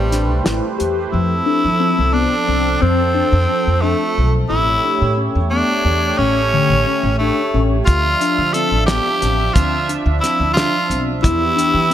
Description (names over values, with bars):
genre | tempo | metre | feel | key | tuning
progressive instrumental, band music in an uneven meter | 178 BPM (eighths) | 5/8 | straight | unclear | A4 = 440 Hz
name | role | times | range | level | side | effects
raspy tenor saxophone | melody | 0.0-11.9 s | G3 to A4 | -18 LUFS | equal | ping-pong delay
sweeping resonant pad | accompaniment | 0.0-11.9 s | E3 to E5 | -23 LUFS | right 3 dB | chorus
upright bass | bass | 0.0-11.9 s | A1 to F3 | -19 LUFS | equal | none
mellow tine electric piano | arpeggios | 0.1-11.9 s | D3 to C#5 | -22 LUFS | left 7 dB | phaser, ping-pong delay
cloth-damped thuddy drum kit | drums | 0.1-1.0, 7.9-11.9 s | hi-hat, kick drum, snare drum | -19 LUFS | equal | none
room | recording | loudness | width
light reverb, studio reverb | bright 1980s-style digital production | -14 LUFS | side -11 dB against mid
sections
0.0-1.1 A section; 1.1-11.9 B section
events
none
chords
0.0 Am9; 1.1 F; 4.5 A7; 7.9 Dmadd9; 11.2 Em